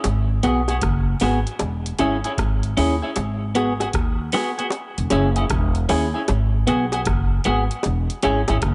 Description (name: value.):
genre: roots reggae.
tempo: 77 BPM.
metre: 4/4.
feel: swing 64% on 16ths.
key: G# minor.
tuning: A4 = 439 Hz.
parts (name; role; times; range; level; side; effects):
booming analog drum machine; drums; 0.0-8.7 s; hi-hat, kick drum, rim click; -28 LUFS; equal; none.
bongos; percussion; 0.0-8.6 s; none; -31 LUFS; equal; none.
upright bass; bass; 0.1-8.7 s; E1 to D#2; -24 LUFS; equal; none.
clean electric guitar; accompaniment; 0.4-8.6 s; B3 to G#4; -28 LUFS; equal; dub echo.
percussive organ stab; stabs; 0.4-8.5 s; B3 to G#4; -26 LUFS; equal; chorus.
room: light reverb.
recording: nothing above 10.9 kHz.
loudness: -21 LUFS.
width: mono.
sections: 0.0-8.7 A section.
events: none.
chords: 0.0 G#m7; 1.6 E6; 3.2 G#m7; 4.7 E6; 6.3 G#m7; 7.8 E6.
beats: | 0.04 0.82 1.60 2.38 | 3.16 3.94 4.72 5.50 | 6.28 7.06 7.84 8.62.